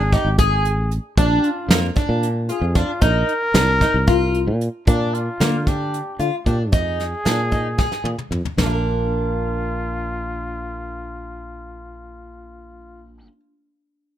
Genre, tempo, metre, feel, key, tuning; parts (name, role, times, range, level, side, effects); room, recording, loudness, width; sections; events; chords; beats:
progressive instrumental, band music in an uneven meter; 227 BPM (eighths); 7/8; straight; Bb mixolydian; A4 = 438 Hz
mellow trumpet; melody; 0.0-13.1 s; D4 to Bb4; -26 LUFS; equal
sustaining fretless electric bass; bass; 0.0-13.3 s; Ab1 to D3; -22 LUFS; equal
fingerpicked twelve-string acoustic guitar; arpeggios; 0.1-13.4 s; Bb3 to Bb4; -24 LUFS; left 1 dB
soft brush drum kit; drums; 0.1-8.7 s; hi-hat, kick drum, snare drum, toms; -19 LUFS; equal
studio reverb; rough home demo mix; -17 LUFS; side -11 dB against mid
0.0-4.9 A section; 4.9-8.6 B section; 8.6-12.3 C section
drum fill 7.8-8.6
0.0 Fm7 (rootless); 1.2 Bb; 3.0 Bbsus2; 4.9 Bb; 6.7 Fm7; 8.6 Bb
0.12 0.39 0.65 0.91 | 1.18 1.44 1.70 1.97 2.23 2.49 2.76 | 3.02 3.29 3.55 3.81 4.08 4.34 4.61 | 4.87 5.13 5.40 5.66 5.93 6.19 6.46 | 6.72 6.99 7.25 7.52 7.78 8.05 8.31 | 8.58 8.84 9.11 9.37 9.64 9.90 10.17 | 10.44 10.70 10.97 11.23 11.50 11.77 12.03